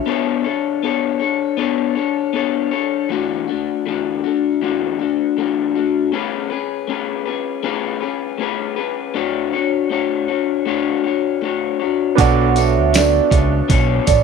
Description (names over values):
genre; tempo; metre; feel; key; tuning
indie pop, bedroom pop; 79 BPM; 4/4; swing 55% on 16ths; B dorian; A4 = 438 Hz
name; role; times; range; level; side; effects
electric guitar through a small old amp; accompaniment; 0.0-14.2 s; E3 to C#5; -18 LUFS; left 10 dB; lush chorus, warbly pitch drift
warm upright piano; accompaniment; 0.0-0.1, 12.2-14.2 s; B3 to D5; -20 LUFS; right 14 dB; cassette tape
vibraphone with soft mallets; second line; 12.2-14.2 s; D5 to F#5; -20 LUFS; right 13 dB; wide subtle chorus, tape echo
fat analog bass; bass; 12.2-14.2 s; A1 to D2; -18 LUFS; right 2 dB; none
dusty soul sampler-style drum kit; drums; 12.2-14.2 s; hi-hat, kick drum, snare drum; -17 LUFS; right 2 dB; none
tambourine; percussion; 12.2-14.2 s; none; -31 LUFS; left 12 dB; none
room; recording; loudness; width
light reverb, small room ambience; 1960s-style stereo with parts hard left and right; -16 LUFS; side -5 dB against mid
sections
0.1-14.2 A section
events
none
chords
0.1 Bm9; 3.1 E9sus4; 6.1 Amaj9; 9.2 Dmaj7/A; 12.2 Bm9